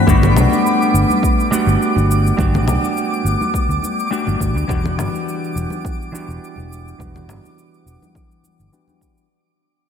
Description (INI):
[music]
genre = sunset chillout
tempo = 104 BPM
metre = 4/4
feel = swing 54% on 16ths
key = G major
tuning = A4 = 445 Hz
[part]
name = clean electric guitar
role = accompaniment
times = 0.0-9.3 s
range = E3 to F#4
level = -19 LUFS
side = moving between left 5 dB and right 5 dB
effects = auto-pan, low-pass filter, ping-pong delay
[part]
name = twinkling granular texture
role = texture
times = 0.0-9.3 s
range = D6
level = -24 LUFS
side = equal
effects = built-in reverb
[part]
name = fingered electric bass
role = bass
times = 0.1-8.7 s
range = E1 to D2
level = -17 LUFS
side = equal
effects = none
[part]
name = cabasa and congas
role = drums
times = 0.1-9.3 s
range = none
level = -25 LUFS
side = left 1 dB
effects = none
[part]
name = electronic kick drum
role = drums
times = 0.1-9.1 s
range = none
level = -20 LUFS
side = equal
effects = none
[part]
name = congas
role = percussion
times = 0.1-9.0 s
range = none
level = -29 LUFS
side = equal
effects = none
[sound]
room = moderate lush hall reverb, RT60 2.7 s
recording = dreamy mix soaked in reverb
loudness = -14 LUFS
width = side -8 dB against mid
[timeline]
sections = 0.1-9.3 A section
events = fade-out 0.1-9.3; filter sweep on clean electric guitar 0.1-9.3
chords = 0.1 Gmaj9; 4.7 Em9